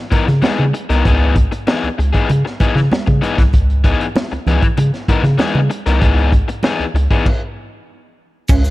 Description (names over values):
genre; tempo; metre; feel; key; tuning
funk; 97 BPM; 4/4; straight; C# dorian; A4 = 440 Hz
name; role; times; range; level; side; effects
crunchy overdriven guitar; accompaniment; 0.1-7.3 s; E3 to A#4; -19 LUFS; left 4 dB; none
round analog bass; bass; 0.1-8.7 s; B#1 to C#3; -14 LUFS; equal; none
crunchy breakbeat drum kit; drums; 0.1-8.7 s; crash cymbal, hi-hat, kick drum, snare drum; -17 LUFS; equal; none
congas; percussion; 0.1-6.8 s; none; -26 LUFS; right 4 dB; none
electric guitar at the edge of break-up; riff; 8.5-8.6 s; C#4; -20 LUFS; right 5 dB; none
egg shaker; percussion; 8.5-8.7 s; none; -33 LUFS; left 3 dB; none
room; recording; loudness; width
little or no reverb; dark, warm production; -13 LUFS; side -18 dB against mid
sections
0.0-8.5 A section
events
stop 7.3-8.5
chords
0.0 C#m9